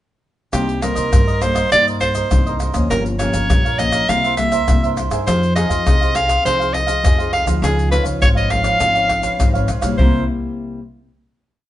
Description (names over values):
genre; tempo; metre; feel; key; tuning
samba and choro; 102 BPM; 4/4; straight; C minor; A4 = 442 Hz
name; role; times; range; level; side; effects
clear soprano saxophone; melody; 0.5-10.3 s; G4 to F5; -18 LUFS; right 1 dB; none
cavaquinho; accompaniment; 0.5-10.2 s; Eb4 to F5; -25 LUFS; right 4 dB; none
nylon-string guitar; accompaniment; 0.5-10.8 s; G2 to Ab4; -23 LUFS; left 3 dB; none
upright bass; bass; 0.5-10.3 s; G1 to G2; -21 LUFS; equal; none
tube shaker, surdo, pandeiro and tamborim; percussion; 0.5-10.1 s; none; -19 LUFS; left 1 dB; none
room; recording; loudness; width
moderate studio reverb, RT60 0.9 s; band playing live in one room, nothing above 10.7 kHz; -14 LUFS; side -13 dB against mid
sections
0.5-10.0 A section; 10.0-11.7 final chord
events
none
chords
0.5 Cm7; 2.9 Gm7b5; 4.1 C7; 5.3 Fm7; 7.6 Db9; 10.0 C7